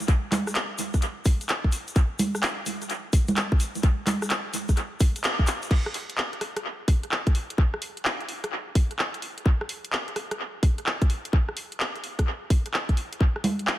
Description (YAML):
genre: UK garage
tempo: 128 BPM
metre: 4/4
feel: swing 66% on 16ths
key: none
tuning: none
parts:
  - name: garage drum kit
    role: drums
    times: 0.0-13.8 s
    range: congas, crash cymbal, handclaps, hi-hat, rim click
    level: -28 LUFS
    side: equal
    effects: studio reverb, tape echo
  - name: egg shaker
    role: percussion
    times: 0.0-5.7 s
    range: none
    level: -38 LUFS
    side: left 3 dB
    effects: tape echo
  - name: electronic kick drum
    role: drums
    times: 0.1-13.3 s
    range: none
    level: -21 LUFS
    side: equal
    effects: studio reverb
room: light reverb, digital ambience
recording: echo-heavy mix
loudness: -23 LUFS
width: side -14 dB against mid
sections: 0.0-5.7 A section; 5.7-13.8 B section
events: drop 0.0-5.7; band accent 5.2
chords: none